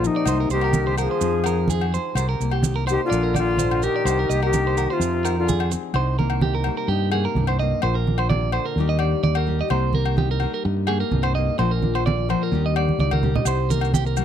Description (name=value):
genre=highlife guitar band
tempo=128 BPM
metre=4/4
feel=swing 54% on 16ths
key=C minor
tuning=A4 = 437 Hz
part: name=hollow concert flute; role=melody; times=0.0-5.7 s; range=Eb4 to Ab4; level=-23 LUFS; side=left 6 dB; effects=none
part: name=brilliant trombone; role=second line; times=0.0-5.7 s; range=C3 to F3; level=-31 LUFS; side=right 13 dB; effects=none
part: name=nylon-string guitar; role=accompaniment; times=0.0-14.2 s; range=G2 to Bb4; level=-28 LUFS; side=left 10 dB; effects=none
part: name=clean electric guitar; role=arpeggios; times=0.0-14.2 s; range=G4 to Eb5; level=-27 LUFS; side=right 9 dB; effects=slapback echo
part: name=fingered electric bass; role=bass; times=0.0-14.2 s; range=Bb1 to G2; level=-23 LUFS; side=equal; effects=none
part: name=congas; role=percussion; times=0.0-14.2 s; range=none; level=-25 LUFS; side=right 3 dB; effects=none
part: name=maracas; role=percussion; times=0.0-5.8, 13.5-14.2 s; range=none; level=-34 LUFS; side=right 18 dB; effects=none
part: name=agogo bells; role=percussion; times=0.3-14.2 s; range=none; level=-32 LUFS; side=left 16 dB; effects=none
room=studio reverb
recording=dry, close 1970s-style studio recording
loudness=-19 LUFS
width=side -9 dB against mid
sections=0.0-5.9 A section; 5.9-14.2 B section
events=drum fill 12.9-13.5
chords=0.3 Cm7; 1.2 Fm7; 2.2 Cm7; 3.1 Bb; 4.1 Cm7; 5.0 Fm7; 5.9 Cm7; 7.8 Bb; 8.8 Ebmaj7; 9.7 Cm7; 11.6 Bb; 12.5 Ebmaj7; 13.5 Cm7